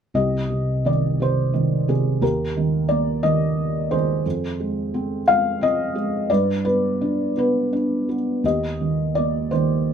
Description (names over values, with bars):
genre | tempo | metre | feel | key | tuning
classical, lyrical solo piano | 58 BPM (dotted quarters) | 6/8 | rubato | C minor | A4 = 440 Hz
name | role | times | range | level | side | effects
felt-muted upright piano | solo | 0.1-9.9 s | C2 to F5 | -19 LUFS | equal | none
room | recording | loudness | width
moderate studio reverb, RT60 0.6 s | minimal, uncompressed stereo recording | -19 LUFS | side -8 dB against mid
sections
0.1-9.9 A section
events
none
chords
0.1 Cm; 2.2 Eb; 4.3 Fm7; 6.3 G; 8.4 Eb